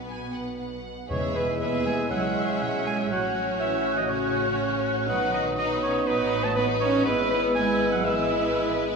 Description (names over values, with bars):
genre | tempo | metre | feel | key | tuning
quick classical-period movement for symphony orchestra | 121 BPM | 4/4 | straight | E major | A4 = 439 Hz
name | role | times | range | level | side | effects
dark clarinet | second line | 0.0-8.9 s | B3 to C#5 | -33 LUFS | left 2 dB | none
rich studio violin section | second line | 0.0-9.0 s | E4 to B4 | -36 LUFS | left 2 dB | none
rich studio viola section | accompaniment | 0.0-9.0 s | B3 to D#4 | -34 LUFS | equal | none
rich studio cello section | bass | 0.0-8.8 s | B2 to D#4 | -32 LUFS | right 3 dB | none
warm studio double bass section | bass | 0.0-9.0 s | G#1 to E2 | -35 LUFS | right 5 dB | none
rich studio violin section | melody | 0.1-9.0 s | B4 to G#5 | -35 LUFS | left 5 dB | none
mellow hollow small flute group | second line | 1.1-8.7 s | D#6 to F#6 | -33 LUFS | right 2 dB | none
warm cor anglais | second line | 1.1-8.8 s | B4 to A5 | -28 LUFS | right 2 dB | none
mellow bassoon | accompaniment | 1.1-9.0 s | F#3 to G#3 | -32 LUFS | right 2 dB | none
dark French horn section | sustained chords | 1.1-8.9 s | G#3 to F#4 | -32 LUFS | left 4 dB | none
timpani | percussion | 1.1-1.8 s | E2 | -36 LUFS | left 2 dB | none
room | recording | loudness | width
wet scoring stage reverb, RT60 1.8 s | studio ambience | -22 LUFS | side -4 dB against mid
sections
0.0-1.1 A section; 1.1-9.0 B section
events
none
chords
0.0 B5; 1.1 E; 2.1 C#m; 3.1 F#m/A; 5.1 B; 6.1 B7/A; 7.1 E/G#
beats
0.08 0.59 | 1.09 1.60 2.10 2.60 | 3.10 3.60 4.09 4.59 | 5.08 5.58 6.07 6.56 | 7.06 7.55 8.04 8.54